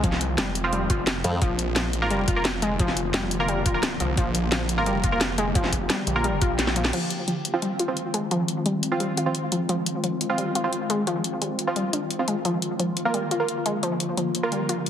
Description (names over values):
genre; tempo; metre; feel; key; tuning
dark technical drum and bass; 174 BPM; 4/4; straight; F dorian; A4 = 441 Hz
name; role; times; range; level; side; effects
swarming drone; sustained chords; 0.0-14.9 s; D3 to G4; -30 LUFS; left 1 dB; built-in reverb, sidechain pumping
wide unison pluck; arpeggios; 0.0-14.8 s; F3 to F4; -28 LUFS; left 1 dB; sidechain pumping, digital delay
snarling distorted saw bass; bass; 0.0-6.9 s; F1 to C2; -28 LUFS; equal; distortion, tube saturation, sidechain pumping
drum and bass drum kit; drums; 0.0-14.9 s; crash cymbal, hi-hat, snare drum; -27 LUFS; left 1 dB; none
electronic kick drum; drums; 0.0-6.5 s; none; -25 LUFS; equal; none
band-passed chord stab; stabs; 0.6-14.8 s; F3 to Bb4; -28 LUFS; right 2 dB; chorus, digital delay
formant-sweep wobble bass; bass; 1.2-1.4 s; F2; -24 LUFS; equal; chorus
room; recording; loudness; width
moderate lush hall reverb, RT60 1.7 s, digital ambience; heavily compressed radio sound, multiband compression; -22 LUFS; side -9 dB against mid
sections
0.0-6.9 A section; 6.9-14.9 B section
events
drum fill 6.6-6.9; band accent 6.8; filter sweep on synth arpeggio sound 6.9-14.9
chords
0.0 Fm7; 1.4 Bb; 6.9 Fm7; 12.4 Bb